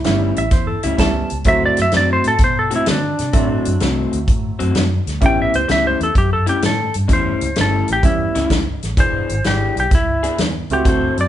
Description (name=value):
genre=electric blues shuffle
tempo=128 BPM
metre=4/4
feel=swing 68% on 8ths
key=unclear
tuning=A4 = 440 Hz
part: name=clean lap steel guitar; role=melody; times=0.0-11.3 s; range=D4 to G5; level=-19 LUFS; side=equal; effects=none
part: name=clear upright piano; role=accompaniment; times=0.0-11.3 s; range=F#3 to C5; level=-24 LUFS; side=right 4 dB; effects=none
part: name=natural country drum kit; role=drums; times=0.0-11.2 s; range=hi-hat, kick drum, snare drum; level=-19 LUFS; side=equal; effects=none
part: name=electric guitar through a small old amp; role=riff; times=0.1-11.2 s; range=A2 to A4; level=-23 LUFS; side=left 4 dB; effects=none
part: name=vintage muted fingered electric bass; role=bass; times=0.1-11.3 s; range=E1 to D3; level=-22 LUFS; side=equal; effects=none
part: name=clean lap steel guitar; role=second line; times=0.4-1.4 s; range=A4 to A5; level=-24 LUFS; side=right 4 dB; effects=none
room=light reverb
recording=band playing live in one room, nothing above 10.3 kHz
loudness=-14 LUFS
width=side -12 dB against mid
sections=0.0-11.3 A section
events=none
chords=0.0 A7; 1.5 D7; 5.2 A7; 9.0 E7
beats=0.04 0.52 0.99 | 1.46 1.93 2.40 2.87 | 3.34 3.81 4.28 4.75 | 5.22 5.69 6.16 6.62 | 7.09 7.57 8.03 8.50 | 8.97 9.44 9.91 10.38 | 10.85